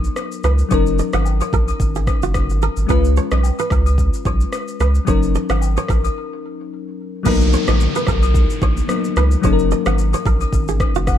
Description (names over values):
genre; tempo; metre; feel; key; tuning
afrobeats; 110 BPM; 4/4; swing 55% on 16ths; F# major; A4 = 436 Hz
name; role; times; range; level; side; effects
bell-like FM electric piano; accompaniment; 0.0-11.2 s; F#3 to F#5; -22 LUFS; left 6 dB; chorus
saturated sub bass; bass; 0.0-11.2 s; F#1 to C#2; -17 LUFS; equal; none
afro-pop drum kit; drums; 0.0-11.2 s; crash cymbal, kick drum, rim click, shaker; -21 LUFS; equal; overdrive
agogo bells and woodblock; percussion; 0.2-11.2 s; none; -30 LUFS; left 9 dB; none
kora; riff; 0.4-11.0 s; F#4 to F#5; -25 LUFS; right 8 dB; ping-pong delay
downlifter; sound effects; 7.3-11.2 s; none; -28 LUFS; equal; none
room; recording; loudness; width
little or no reverb; dark, warm production; -15 LUFS; side -10 dB against mid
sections
0.0-7.3 A section; 7.3-11.2 B section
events
break 6.2-7.3; FM electric piano fill 10.8-11.2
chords
0.0 Bmaj7; 0.7 F#6; 2.9 C#7; 5.1 F#6; 7.3 Bmaj7; 9.4 F#6